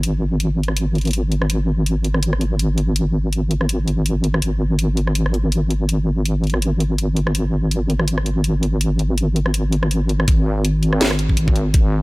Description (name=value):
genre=half-time drum and bass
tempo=164 BPM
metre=4/4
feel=swing 55% on 16ths, half-time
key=unclear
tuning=A4 = 439 Hz
part: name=deep soft wobble bass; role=bass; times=0.0-12.0 s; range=G#1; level=-17 LUFS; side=equal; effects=chorus
part: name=drum and bass drum kit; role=drums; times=0.0-11.8 s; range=hi-hat, rim click, snare drum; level=-24 LUFS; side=equal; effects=none
part: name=electronic kick drum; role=drums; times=10.3-11.8 s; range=none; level=-15 LUFS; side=equal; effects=none
room=little or no reverb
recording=none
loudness=-16 LUFS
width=side -23 dB against mid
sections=0.0-10.3 A section; 10.3-12.0 B section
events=drop 10.3-12.0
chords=none